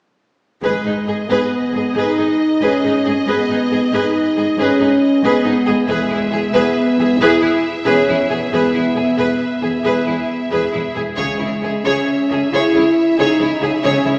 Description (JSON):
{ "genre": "cinematic, epic orchestral film score", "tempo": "91 BPM (dotted quarters)", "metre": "12/8", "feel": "straight", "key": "G# minor", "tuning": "A4 = 440 Hz", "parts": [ { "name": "warm symphonic violin section", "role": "melody", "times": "0.6-14.2 s", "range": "D#5 to E5", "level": "-28 LUFS", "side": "equal", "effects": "none" }, { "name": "rich symphonic violin section", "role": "second line", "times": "0.6-14.1 s", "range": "D#4 to C#5", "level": "-24 LUFS", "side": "equal", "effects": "none" }, { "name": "rich symphonic viola section", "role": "accompaniment", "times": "0.6-14.1 s", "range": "G#4", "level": "-24 LUFS", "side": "equal", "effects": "none" }, { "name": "mellow French horn section", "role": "sustained chords", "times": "0.6-14.2 s", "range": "G#3 to E4", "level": "-19 LUFS", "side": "equal", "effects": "none" }, { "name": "clear studio double bass section", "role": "bass", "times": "0.6-14.1 s", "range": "E1 to C#2", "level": "-31 LUFS", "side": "equal", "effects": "none" }, { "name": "dark studio cello section", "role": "bass", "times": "0.6-14.1 s", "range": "E2 to C#3", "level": "-28 LUFS", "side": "equal", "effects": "none" }, { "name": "taiko ensemble", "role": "drums", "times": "0.6-1.8, 5.9-6.7, 11.2-12.0 s", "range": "none", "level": "-39 LUFS", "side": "equal", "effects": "none" } ], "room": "wet scoring stage reverb, RT60 1.9 s", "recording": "heard from further back in the room, small speaker sound", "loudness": "-16 LUFS", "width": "mono", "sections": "0.6-14.2 A section", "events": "none", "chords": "0.6 G#m; 5.9 E; 11.2 C#m" }